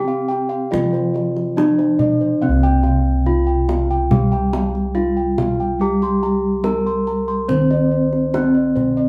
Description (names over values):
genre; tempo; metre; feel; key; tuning
Javanese gamelan; 71 BPM; 4/4; straight; C slendro; A4 = 440 Hz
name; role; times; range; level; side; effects
gamelan-type bronze metallophone; melody; 0.0-9.1 s; C4 to C5; -22 LUFS; equal; none
gamelan-type bronze metallophone; accompaniment; 0.0-9.1 s; C3 to C4; -25 LUFS; equal; none
gamelan-type bossed gongs; arpeggios; 0.0-9.1 s; C5 to C6; -28 LUFS; equal; none
gamelan-type bossed gongs; bass; 0.0-9.1 s; C2 to G4; -24 LUFS; equal; none
kendang; percussion; 0.3-9.0 s; none; -26 LUFS; equal; none
room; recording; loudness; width
moderate large studio reverb, RT60 0.9 s; band playing live in one room; -18 LUFS; mono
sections
0.0-9.1 A section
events
none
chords
none